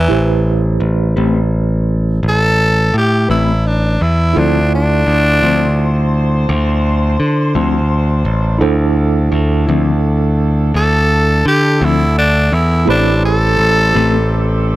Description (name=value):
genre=blues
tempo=56 BPM (dotted quarters)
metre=12/8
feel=straight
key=unclear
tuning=A4 = 441 Hz
part: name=growling tenor saxophone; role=melody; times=0.0-14.6 s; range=E3 to A4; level=-15 LUFS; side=equal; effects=none
part: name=tine electric piano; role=accompaniment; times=0.0-14.8 s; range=D4 to B5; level=-21 LUFS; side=right 7 dB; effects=medium stereo tremolo
part: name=modern bright picked electric bass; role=bass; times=0.0-14.8 s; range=A1 to D3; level=-13 LUFS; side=equal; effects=none
part: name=mellow electric guitar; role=accompaniment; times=1.2-14.2 s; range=D3 to B4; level=-17 LUFS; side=left 5 dB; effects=harmonic tremolo
part: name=warm saxophone section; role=sustained chords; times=4.4-14.8 s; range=C4 to C5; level=-24 LUFS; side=left 1 dB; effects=none
room=little or no reverb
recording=dry, close 1970s-style studio recording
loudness=-11 LUFS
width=side -16 dB against mid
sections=0.0-14.8 A section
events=tenor saxophone solo 0.0-14.8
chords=0.0 Am9; 4.4 Dm9; 12.9 Am9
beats=| 0.11 1.17 2.23 3.30 | 4.36 5.43 6.49 7.55 | 8.62 9.69 10.75 11.82 | 12.89 13.96